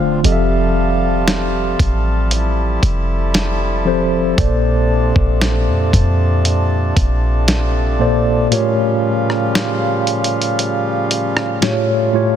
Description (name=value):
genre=contemporary R&B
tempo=58 BPM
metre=4/4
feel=straight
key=unclear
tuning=A4 = 440 Hz
part: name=mellow tine electric piano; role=accompaniment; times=0.0-12.4 s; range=A2 to F5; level=-18 LUFS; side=left 1 dB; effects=medium stereo tremolo
part: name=hand-pumped harmonium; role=sustained chords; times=0.0-12.4 s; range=C3 to A4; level=-21 LUFS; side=right 2 dB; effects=none
part: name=clean 808-style bass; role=bass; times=0.0-8.5 s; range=D1 to F2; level=-17 LUFS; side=equal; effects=none
part: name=dusty soul sampler-style drum kit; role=drums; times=0.2-11.9 s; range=hi-hat, kick drum, rim click, snare drum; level=-18 LUFS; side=equal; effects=none
room=light reverb, digital ambience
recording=dense, heavily limited modern master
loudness=-14 LUFS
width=side -9 dB against mid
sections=0.0-12.4 A section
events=kick muted 8.5-12.4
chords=0.2 Fmaj9; 4.4 Bbmaj9; 8.5 A7b9b13; 11.6 A7b13